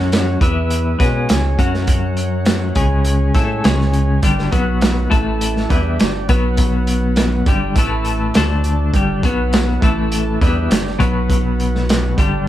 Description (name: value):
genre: psychedelic rock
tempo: 102 BPM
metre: 4/4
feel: straight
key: unclear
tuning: A4 = 436 Hz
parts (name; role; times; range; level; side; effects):
- combo organ; sustained chords; 0.0-12.5 s; E3 to A5; -24 LUFS; right 2 dB; none
- twelve-string electric guitar; riff; 0.0-12.5 s; G2 to B4; -19 LUFS; left 3 dB; tremolo
- saturated sub bass; bass; 0.0-12.5 s; G1 to B2; -20 LUFS; right 1 dB; none
- crunchy breakbeat drum kit; drums; 0.1-12.3 s; hi-hat, kick drum, snare drum; -17 LUFS; right 1 dB; none
room: light reverb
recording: band playing live in one room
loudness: -14 LUFS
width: side -13 dB against mid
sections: 0.0-12.5 A section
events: none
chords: 0.4 E5; 1.0 C#5; 1.6 F#5; 2.8 C#5; 4.2 G5; 4.5 B5; 5.1 A5; 5.7 G5; 6.3 B5; 7.5 G5; 7.8 A5; 8.4 D5; 8.9 G5; 9.2 B5; 9.8 A5; 10.4 G5; 11.0 B5; 12.2 G5